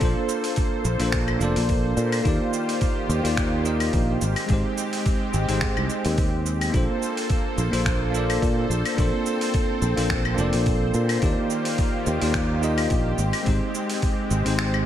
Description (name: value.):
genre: sunset chillout.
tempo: 107 BPM.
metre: 4/4.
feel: swing 55% on 16ths.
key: Bb major.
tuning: A4 = 440 Hz.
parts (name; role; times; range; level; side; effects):
bell-like tine electric piano; accompaniment; 0.0-14.9 s; Ab3 to Eb5; -26 LUFS; equal; auto-pan, ping-pong delay.
lush unison pad; sustained chords; 0.0-14.9 s; Eb3 to C5; -29 LUFS; equal; chorus.
sustaining fretless electric bass; bass; 0.0-14.8 s; F1 to Bb2; -24 LUFS; equal; none.
dusty soul sampler-style drum kit; drums; 0.0-14.8 s; cabasa, claves, finger snaps, hi-hat; -30 LUFS; equal; overdrive, gated reverb.
electronic kick drum; drums; 0.0-14.2 s; none; -25 LUFS; equal; overdrive.
room: light reverb.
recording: bright 1980s-style digital production.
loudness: -21 LUFS.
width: side -11 dB against mid.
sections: 0.0-14.9 A section.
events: kick drops out 14.6.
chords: 0.0 Bbmaj9; 2.3 Ebmaj9; 4.2 Abmaj7; 6.7 Bbmaj9; 11.2 Ebmaj9; 13.2 Abmaj7.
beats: | 0.01 0.57 1.13 1.69 | 2.25 2.81 3.38 3.94 | 4.50 5.06 5.62 6.18 | 6.74 7.30 7.86 8.42 | 8.98 9.54 10.11 10.66 | 11.23 11.79 12.35 12.91 | 13.47 14.03 14.59.